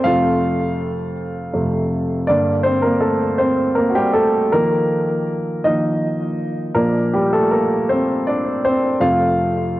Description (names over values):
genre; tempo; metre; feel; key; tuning
pop; 54 BPM (dotted quarters); 6/8; straight; Bb major; A4 = 441 Hz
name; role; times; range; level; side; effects
warm grand piano; solo; 0.0-9.8 s; F2 to F5; -16 LUFS; equal; cassette tape, tape echo
room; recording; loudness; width
light reverb, studio ambience; home recording on cassette; -16 LUFS; side -16 dB against mid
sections
0.0-9.8 A section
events
grand piano solo 0.0-9.8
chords
0.1 F; 2.3 Gmadd9; 4.5 Ebsus2; 6.8 Bbadd9; 9.0 F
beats
| 0.05 1.17 | 2.29 3.40 | 4.52 5.64 | 6.75 7.87 | 8.99